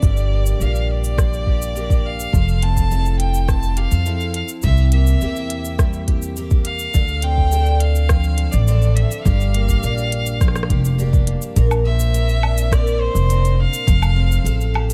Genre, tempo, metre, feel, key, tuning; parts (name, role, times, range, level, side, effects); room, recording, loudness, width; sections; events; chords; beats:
folktronica; 104 BPM; 4/4; straight; F major; A4 = 440 Hz
clear violin; melody; 0.0-14.7 s; C5 to A5; -28 LUFS; equal; tape echo
picked twelve-string acoustic guitar; arpeggios; 0.0-14.9 s; G2 to Bb4; -28 LUFS; equal; low-pass filter
upright bass; bass; 0.0-14.9 s; F1 to F2; -20 LUFS; equal
electronic kick drum; drums; 0.0-14.0 s; -19 LUFS; equal
organic electronic drum kit; drums; 0.0-14.9 s; hi-hat, rim click, shaker, woodblock; -30 LUFS; equal
small room ambience; -18 LUFS; mono
0.0-11.6 A section; 11.6-14.9 B section
0.0 Gm7; 2.3 Fmaj7; 4.6 C7; 6.9 Dm7; 9.3 Gm7; 11.6 Bbadd9; 13.9 Fadd9
| 0.03 0.60 1.18 1.76 | 2.33 2.91 3.49 4.06 | 4.64 5.22 5.79 6.37 | 6.95 7.53 8.10 8.68 | 9.26 9.83 10.41 10.99 | 11.56 12.14 12.72 13.29 | 13.87 14.45